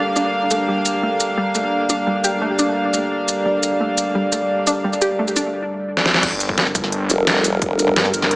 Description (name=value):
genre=dark technical drum and bass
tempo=173 BPM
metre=4/4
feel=straight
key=G minor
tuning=A4 = 440 Hz
part: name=dark analog pad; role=sustained chords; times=0.0-8.4 s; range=G3 to D5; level=-22 LUFS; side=equal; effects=chorus, sidechain pumping
part: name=warbly dusty pluck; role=arpeggios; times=0.0-5.4 s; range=G3 to G4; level=-23 LUFS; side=equal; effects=analog chorus, sidechain pumping, digital delay
part: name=rich chamber string section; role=texture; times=0.0-5.5 s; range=Bb3 to F5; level=-21 LUFS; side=equal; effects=sidechain pumping
part: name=dubstep drum kit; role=drums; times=0.2-8.4 s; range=crash cymbal, hi-hat, shaker, snare drum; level=-18 LUFS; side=equal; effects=studio reverb
part: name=wide detuned saw bass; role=bass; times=6.2-8.4 s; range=G1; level=-25 LUFS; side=equal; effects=chorus
part: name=electronic kick drum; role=drums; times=6.2-7.9 s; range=none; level=-26 LUFS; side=equal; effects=studio reverb
part: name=sub drop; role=sound effects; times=6.2-7.6 s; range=none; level=-49 LUFS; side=equal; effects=none
part: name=formant-sweep wobble bass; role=bass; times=7.1-8.1 s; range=F1 to G2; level=-20 LUFS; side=equal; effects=chorus
room=moderate lush hall reverb, RT60 2.1 s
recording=small speaker sound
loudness=-16 LUFS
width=side -23 dB against mid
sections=0.0-6.2 A section; 6.2-8.4 B section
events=filter sweep on synth arpeggio sound 0.0-6.2; drum fill 6.0; drop 6.2-8.4; impact 6.2-7.6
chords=0.0 Gm